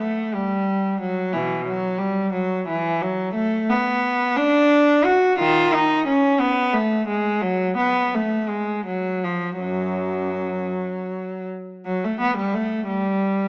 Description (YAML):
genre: classical, baroque-style suite movement for unaccompanied cello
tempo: 52-60 BPM (dotted quarters)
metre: 6/8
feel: rubato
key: F# minor from 3.4 s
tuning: A4 = 441 Hz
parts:
  - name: clear cello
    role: solo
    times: 0.0-13.5 s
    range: F#2 to F#4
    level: -19 LUFS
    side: equal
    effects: none
room: moderate recital hall reverb, RT60 1.7 s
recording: worn, warbling old tape, cassette tape, warbly pitch drift, small speaker sound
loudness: -19 LUFS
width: side -30 dB against mid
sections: 0.0-11.9 A section; 11.9-13.5 A section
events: none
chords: none